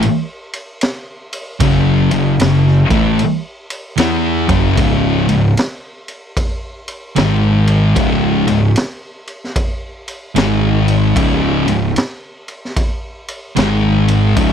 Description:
stoner and doom metal; 75 BPM; 4/4; swing 64% on 8ths; A4 = 441 Hz
raw garage drum kit; drums; 0.0-14.5 s; kick drum, ride cymbal, snare drum; -20 LUFS; equal
thick fuzz guitar; riff; 1.6-14.5 s; C#2 to E4; -14 LUFS; left 7 dB; distortion
thick fuzz guitar; riff; 1.6-14.5 s; C#2 to E4; -16 LUFS; right 8 dB; distortion
fuzz picked electric bass; bass; 1.6-14.5 s; C#1 to E2; -19 LUFS; right 1 dB; overdrive
little or no reverb; dry, close 1970s-style studio recording; -12 LUFS; side -8 dB against mid
0.0-4.8 A section; 4.8-14.5 B section
0.0 F#5; 4.8 C#5; 7.2 G#5; 8.0 C#5; 10.4 G#5; 11.2 C#5; 13.6 G#5

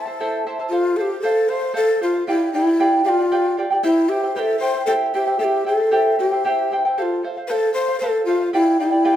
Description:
andean folk, Andean ensemble; 77 BPM (dotted quarters); 6/8; straight; A4 = 441 Hz
breathy mellow large quena; melody; 0.0-9.2 s; E4 to A5; -19 LUFS; left 1 dB
charango; accompaniment; 0.0-9.2 s; E4 to A5; -21 LUFS; right 1 dB
moderate large studio reverb, RT60 0.8 s; band playing live in one room; -17 LUFS; side -11 dB against mid
0.7-9.2 A section
0.0 Am; 0.7 F; 2.3 G7; 3.8 C; 7.0 F; 8.5 G7

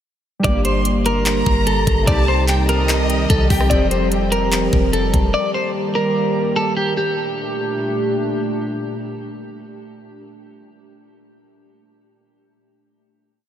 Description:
hip hop, trap; 147 BPM; 4/4; half-time; G minor; A4 = 443 Hz
clean electric guitar; melody; 0.4-8.2 s; G4 to D5; -21 LUFS; equal; wide subtle chorus, diffuse ambient delay
warbly lo-fi synth keys; accompaniment; 0.4-5.4 s; C3 to C5; -24 LUFS; left 1 dB; chorus
dark analog pad; sustained chords; 0.9-10.3 s; Bb2 to G4; -23 LUFS; right 2 dB; chorus
clean 808-style bass; bass; 0.4-5.3 s; F1 to C2; -20 LUFS; equal
trap drum kit; drums; 0.4-5.2 s; handclaps, hi-hat, kick drum, rim click; -20 LUFS; equal
warm symphonic violin section; second line; 0.7-3.7 s; Eb5 to C6; -26 LUFS; equal; diffuse ambient delay
moderate huge ambient reverb, RT60 6.6 s; dreamy mix soaked in reverb; -16 LUFS; side -10 dB against mid
0.4-7.0 hook; 7.0-10.2 final chord
0.4 Gmadd9; 2.1 Cm; 3.7 Fadd9; 5.3 Eb; 7.0 Gmadd9

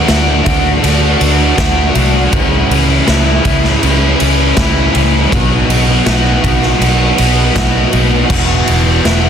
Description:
rock, shoegaze and dream pop; 80 BPM; 4/4; straight; A4 = 439 Hz
biting overdriven guitar; riff; 0.0-9.3 s; E2 to F#4; -15 LUFS; left 11 dB; lush chorus
overdriven electric guitar; riff; 0.0-9.3 s; E2 to F#4; -16 LUFS; right 12 dB; reverse reverb
vintage muted fingered electric bass; bass; 0.0-9.3 s; E1 to D2; -14 LUFS; equal
raw garage drum kit; drums; 0.1-9.2 s; crash cymbal, kick drum, ride cymbal, snare drum; -14 LUFS; equal
small room ambience; dense, heavily limited modern master; -9 LUFS; side -8 dB against mid
0.0-9.3 A section
0.0 D; 2.3 C#m; 5.3 B; 8.3 Esus2

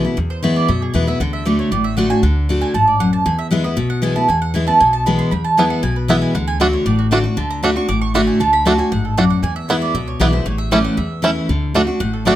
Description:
bluegrass; 233 BPM; 4/4; straight; E mixolydian; A4 = 436 Hz
picked steel-string acoustic guitar; accompaniment; 0.0-12.4 s; E2 to F#4; -17 LUFS; left 2 dB
upright bass; bass; 0.0-12.4 s; A1 to F#2; -22 LUFS; equal
mandolin; stabs; 0.3-12.4 s; F#4 to D6; -20 LUFS; right 3 dB
bluegrass banjo; melody; 5.6-12.3 s; A3 to F#4; -19 LUFS; right 2 dB; plate reverb
light reverb; close, detailed microphones; -14 LUFS; side -13 dB against mid
0.0-12.4 A section
mandolin solo 0.0-12.4
0.0 E; 1.2 D; 3.3 E; 6.3 D; 9.4 E; 10.5 A; 11.5 D

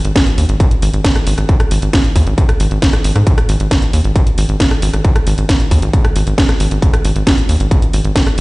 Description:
uplifting trance; 135 BPM; 4/4; straight; A4 = 440 Hz
tight sequencer bass; bass; 0.0-8.4 s; G#1 to G#2; -13 LUFS; equal; sidechain pumping
techno drum kit; drums; 0.0-8.4 s; hi-hat, rim click, snare drum; -18 LUFS; equal; overdrive
electronic kick drum; drums; 0.2-8.2 s; -13 LUFS; equal; distortion, overdrive
digital ambience; played on a big sound system in a bare room, stone room reverb, nothing above 10.3 kHz; -11 LUFS; side -22 dB against mid
0.0-8.4 A section

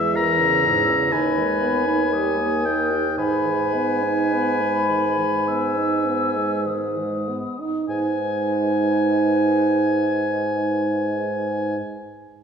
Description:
classical, slow romantic movement for wind quintet; 48-63 BPM; 4/4; rubato; G# minor; A4 = 443 Hz
mellow hollow silver concert flute; melody; 0.0-11.8 s; B4 to E6; -28 LUFS; left 5 dB
clear oboe; second line; 0.0-11.8 s; E5 to A#5; -24 LUFS; left 3 dB
clear French horn; accompaniment; 0.0-11.8 s; G#2 to G4; -28 LUFS; right 2 dB
warm clarinet; accompaniment; 0.0-11.8 s; D#4 to B4; -26 LUFS; right 4 dB
dark bassoon; bass; 0.0-11.8 s; D#2 to G#2; -24 LUFS; right 1 dB
wet recital hall reverb, RT60 1.7 s; heard from further back in the room, small room ambience; -19 LUFS; side -7 dB against mid
0.0-7.9 A section; 7.9-12.4 B section
slowing down 0.0-7.9
0.0 C#m/E; 1.1 G#m/D#; 2.1 D#; 3.2 G#m

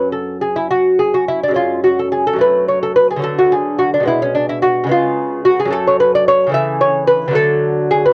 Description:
classical, baroque-style dance for lute; 72 BPM (dotted quarters); 6/8; rubato; F# minor; A4 = 440 Hz
lute; solo; 0.0-8.1 s; F#2 to E5; -15 LUFS; equal
light reverb; home recording on cassette; -15 LUFS; mono
0.0-8.1 A section
0.0 F#5; 1.6 C#5/F#; 2.4 F#m; 3.2 D; 4.1 Bm69; 4.9 C#7; 5.7 F#m; 6.5 A/C#; 7.4 D

